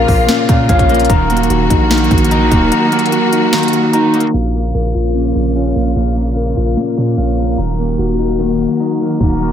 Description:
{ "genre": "hip hop, trap", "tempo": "148 BPM", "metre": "4/4", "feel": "half-time", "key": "Bb minor", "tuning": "A4 = 440 Hz", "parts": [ { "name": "electric guitar at the edge of break-up", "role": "accompaniment", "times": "0.0-9.5 s", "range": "Bb2 to Eb4", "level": "-17 LUFS", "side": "right 4 dB", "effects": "wide subtle chorus" }, { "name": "rich studio string section", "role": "sustained chords", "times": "0.0-9.5 s", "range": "Db3 to Gb4", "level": "-21 LUFS", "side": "equal", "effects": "none" }, { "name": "mellow tine electric piano", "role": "arpeggios", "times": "0.0-9.5 s", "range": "Bb3 to Bb5", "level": "-16 LUFS", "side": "left 5 dB", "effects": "auto-pan, analog delay" }, { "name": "hard-hitting 808-style bass", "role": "bass", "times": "0.0-9.5 s", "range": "Eb1 to Bb2", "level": "-17 LUFS", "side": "right 1 dB", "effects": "none" }, { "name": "trap drum kit", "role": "drums", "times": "0.1-9.5 s", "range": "hi-hat, kick drum, snare drum", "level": "-17 LUFS", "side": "right 1 dB", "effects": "none" } ], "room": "moderate lush hall reverb, RT60 1.7 s", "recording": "dreamy mix soaked in reverb, low-pass filter", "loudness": "-11 LUFS", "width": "side -9 dB against mid", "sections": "0.0-4.3 A section; 4.3-9.5 B section", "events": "kick muted 2.7-4.3; filter sweep 4.3-9.5", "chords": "0.0 Bbm; 1.1 Ebm; 4.3 Bbm; 7.6 Ebm", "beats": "0.28 0.69 | 1.10 1.50 1.91 2.31 | 2.72 3.12 3.53 3.93 | 4.34 4.75 5.15 5.56 | 5.96 6.37 6.77 7.18 | 7.58 7.99 8.39 8.80 | 9.20" }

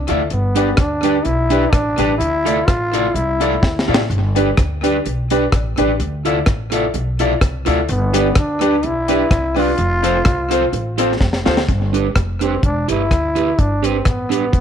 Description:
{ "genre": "ska", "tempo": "126 BPM", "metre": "4/4", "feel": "swing 53% on 8ths", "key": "G mixolydian", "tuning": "A4 = 440 Hz", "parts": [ { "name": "growling trombone", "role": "melody", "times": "0.0-3.9, 7.9-14.6 s", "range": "B3 to F4", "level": "-20 LUFS", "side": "left 1 dB", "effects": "tube saturation" }, { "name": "upright bass", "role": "bass", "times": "0.0-14.6 s", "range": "E1 to A2", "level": "-21 LUFS", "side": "equal", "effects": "none" }, { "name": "electric guitar at the edge of break-up", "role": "accompaniment", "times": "0.1-14.6 s", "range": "D4 to E5", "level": "-21 LUFS", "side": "right 12 dB", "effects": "none" }, { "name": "bright upright piano", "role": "stabs", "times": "0.1-11.6 s", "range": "C4 to D5", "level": "-21 LUFS", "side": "left 13 dB", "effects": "none" }, { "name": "deep reggae drum kit", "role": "drums", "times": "0.1-14.6 s", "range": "hi-hat, kick drum, rim click, snare drum", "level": "-18 LUFS", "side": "equal", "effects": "tape echo" } ], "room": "light reverb, small room ambience", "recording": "1960s-style stereo with parts hard left and right", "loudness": "-14 LUFS", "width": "side -8 dB against mid", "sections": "0.0-11.7 A section; 11.7-14.6 B section", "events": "drum fill 3.6-4.1, 11.2-11.7", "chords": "0.3 G; 2.2 Dmadd9; 4.1 G; 6.0 Dmadd9; 7.9 G; 9.8 F; 11.7 G; 12.6 Em; 13.6 G", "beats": "| 0.31 0.78 1.26 1.73 | 2.21 2.68 3.16 3.63 | 4.11 4.58 5.05 5.53 | 6.00 6.48 6.95 7.42 | 7.90 8.37 8.84 9.32 | 9.79 10.26 10.74 11.21 | 11.69 12.16 12.64 13.11 | 13.59 14.06 14.54" }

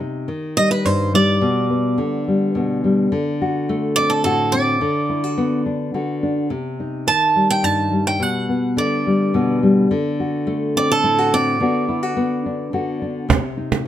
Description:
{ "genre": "acoustic folk duo or small band", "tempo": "106 BPM", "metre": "3/4", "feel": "straight", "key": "G major", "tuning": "A4 = 438 Hz", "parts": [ { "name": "nylon-string guitar", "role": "accompaniment", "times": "0.0-13.9 s", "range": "G2 to F#4", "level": "-18 LUFS", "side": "left 2 dB", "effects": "none" }, { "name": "picked swing-style acoustic guitar", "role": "melody", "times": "0.6-12.7 s", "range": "A4 to A5", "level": "-19 LUFS", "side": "right 3 dB", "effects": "none" }, { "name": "cajon", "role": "percussion", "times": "13.3-13.9 s", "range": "none", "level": "-17 LUFS", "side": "right 5 dB", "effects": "none" } ], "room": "light reverb", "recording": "close, detailed microphones", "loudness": "-17 LUFS", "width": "side -11 dB against mid", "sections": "0.0-13.3 A section", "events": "none", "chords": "0.0 Cm; 1.4 G/B; 3.1 D7; 4.8 Bm/D; 6.5 Cm; 8.2 Gmaj7/B; 9.9 D7; 11.6 Bm/D; 13.3 Cm", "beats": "0.28 0.84 | 1.41 1.98 2.54 | 3.11 3.67 4.24 | 4.81 5.37 5.94 | 6.50 7.07 7.64 | 8.20 8.77 9.34 | 9.90 10.47 11.04 | 11.60 12.17 12.73 | 13.30 13.87" }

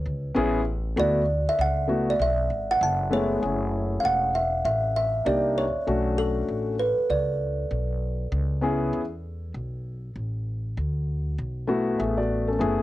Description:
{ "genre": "hip hop", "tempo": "98 BPM", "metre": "4/4", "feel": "swing 61% on 16ths", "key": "unclear", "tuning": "A4 = 440 Hz", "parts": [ { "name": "upright bass", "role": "bass", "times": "0.0-12.8 s", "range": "E1 to E2", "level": "-28 LUFS", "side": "equal", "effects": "none" }, { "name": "dark grand piano", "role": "accompaniment", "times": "0.3-12.8 s", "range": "G#3 to E5", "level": "-25 LUFS", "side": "left 2 dB", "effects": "cassette tape" }, { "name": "kalimba", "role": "melody", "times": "1.0-8.0 s", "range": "A4 to A5", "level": "-25 LUFS", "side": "right 1 dB", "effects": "cassette tape" } ], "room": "moderate small room reverb, RT60 0.6 s", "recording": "home recording on cassette", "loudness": "-23 LUFS", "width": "side -16 dB against mid", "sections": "0.0-3.4 A section; 3.4-12.8 B section", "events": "kalimba solo 0.0-3.4", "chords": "0.0 Amaj7/C#; 1.0 D69; 2.8 F#m11; 3.4 F#m9; 5.3 Cm9; 5.9 Bm9; 8.3 Amaj7/C#; 10.8 D69", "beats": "0.36 | 0.97 1.58 2.19 2.81 | 3.42 4.03 4.64 5.26 | 5.87 6.48 7.09 7.71 | 8.32 8.93 9.54 10.15 | 10.77 11.38 11.99 12.60" }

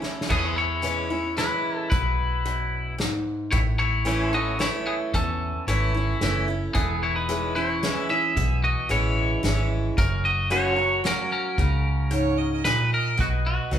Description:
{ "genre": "honky-tonk and classic country", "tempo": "112 BPM", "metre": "3/4", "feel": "straight", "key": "unclear", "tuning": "A4 = 441 Hz", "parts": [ { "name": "picked steel-string acoustic guitar", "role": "accompaniment", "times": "0.0-13.8 s", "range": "E2 to F#4", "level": "-28 LUFS", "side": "equal", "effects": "none" }, { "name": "pedal steel guitar", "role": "sustained chords", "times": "0.0-13.8 s", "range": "E3 to D#5", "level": "-36 LUFS", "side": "right 2 dB", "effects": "none" }, { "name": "unplugged drum kit", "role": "drums", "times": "0.0-13.8 s", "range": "crash cymbal, hi-hat, kick drum, snare drum", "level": "-28 LUFS", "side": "equal", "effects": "none" }, { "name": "twangy electric guitar", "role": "melody", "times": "0.3-13.8 s", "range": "B3 to E5", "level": "-26 LUFS", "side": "left 1 dB", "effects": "none" }, { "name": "vintage muted fingered electric bass", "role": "bass", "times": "0.3-13.8 s", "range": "E1 to E2", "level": "-26 LUFS", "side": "equal", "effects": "none" }, { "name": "clear fiddle", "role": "second line", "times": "12.1-13.2 s", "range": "C#5 to D#5", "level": "-31 LUFS", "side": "right 7 dB", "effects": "none" } ], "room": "moderate large studio reverb, RT60 1.4 s", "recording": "band playing live in one room", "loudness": "-22 LUFS", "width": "side -9 dB against mid", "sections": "0.3-13.2 A section", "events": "drum fill 0.0", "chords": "0.3 E6; 3.5 A; 6.8 E6; 10.0 F#; 13.2 B", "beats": "| 0.30 0.84 1.38 | 1.92 2.46 2.99 | 3.53 4.07 4.61 | 5.14 5.68 6.22 | 6.75 7.29 7.83 | 8.36 8.90 9.44 | 9.97 10.51 11.05 | 11.58 12.12 12.65 | 13.19 13.73" }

